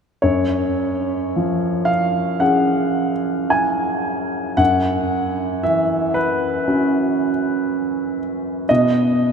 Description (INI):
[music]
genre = classical, impressionist solo piano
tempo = 53-60 BPM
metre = 4/4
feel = rubato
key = unclear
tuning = A4 = 439 Hz
[part]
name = clear grand piano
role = solo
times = 0.2-9.3 s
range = F#2 to G#5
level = -17 LUFS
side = equal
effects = none
[sound]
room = wet cathedral reverb, RT60 5.7 s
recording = in a vast, echoing space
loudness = -17 LUFS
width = side -6 dB against mid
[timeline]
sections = 0.2-9.3 A section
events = none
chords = 0.2 F#sus2; 4.6 Esus2/F#; 8.7 B